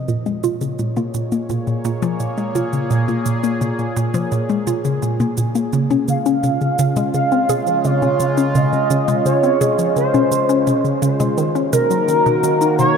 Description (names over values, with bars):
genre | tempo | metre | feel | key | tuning
ambient, sequencer-driven space music | 85 BPM | 4/4 | straight | Bb minor | A4 = 440 Hz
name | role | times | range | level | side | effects
sweeping resonant pad | sustained chords | 0.0-13.0 s | Bb2 to Eb5 | -22 LUFS | equal | chorus, phaser
hollow square pluck | riff | 0.0-12.9 s | Bb2 to Bb4 | -19 LUFS | equal | chorus, tape echo
electronic shaker and toms | percussion | 0.1-12.9 s | none | -25 LUFS | left 2 dB | none
expressive synth lead | melody | 6.1-13.0 s | Bb4 to F5 | -18 LUFS | right 1 dB | analog chorus, tape echo
room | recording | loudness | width
wet huge ambient reverb, RT60 9.0 s | in a vast, echoing space | -15 LUFS | side -6 dB against mid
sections
0.0-13.0 A section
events
fade-in on analog synth pad 0.0-13.0; fade-in on drum 0.0-13.0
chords
0.1 Bbm7; 5.7 Dbmaj7; 11.4 Ebm7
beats
| 0.08 0.79 1.49 2.20 | 2.91 3.61 4.32 5.02 | 5.73 6.43 7.14 7.85 | 8.55 9.26 9.96 10.67 | 11.38 12.08 12.79